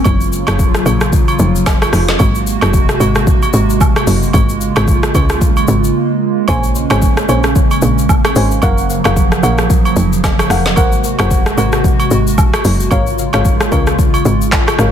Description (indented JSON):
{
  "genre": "amapiano",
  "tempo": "112 BPM",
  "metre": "4/4",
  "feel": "swing 58% on 16ths",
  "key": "unclear",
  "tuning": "A4 = 440 Hz",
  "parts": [
    { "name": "hollow soft pad", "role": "sustained chords", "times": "0.0-14.9 s", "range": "C3 to Gb4", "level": "-17 LUFS", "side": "right 2 dB", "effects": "chorus" },
    { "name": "tight log drum bass", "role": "bass", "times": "0.0-14.9 s", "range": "F1 to Db2", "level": "-16 LUFS", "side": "equal", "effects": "none" },
    { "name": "agogo bells and woodblock", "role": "percussion", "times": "0.0-14.8 s", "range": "none", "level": "-22 LUFS", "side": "right 5 dB", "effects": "none" },
    { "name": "afro-pop drum kit", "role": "drums", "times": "0.1-14.9 s", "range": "handclaps, hi-hat, kick drum, rim click, shaker, snare drum", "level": "-14 LUFS", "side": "equal", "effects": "soft clipping on snare" },
    { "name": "deep mellow chord stab", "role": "stabs", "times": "6.5-14.9 s", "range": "Bb4 to Ab5", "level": "-20 LUFS", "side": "left 2 dB", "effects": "chorus, digital delay" }
  ],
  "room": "light reverb, digital ambience",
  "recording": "dense, heavily limited modern master",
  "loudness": "-10 LUFS",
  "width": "side -9 dB against mid",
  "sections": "0.0-14.9 A section",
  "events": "break 5.9-6.5",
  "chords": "0.1 Gbmaj7; 2.2 Ab9; 4.3 Db6/Ab; 6.5 Bbm9; 8.6 Gbmaj7; 10.8 Ab9; 12.9 Db6/Ab",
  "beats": "| 0.06 0.59 1.13 1.66 | 2.20 2.73 3.27 3.81 | 4.34 4.88 5.41 5.95 | 6.48 7.02 7.56 8.09 | 8.63 9.16 9.70 10.23 | 10.77 11.31 11.84 12.38 | 12.91 13.45 13.98 14.52"
}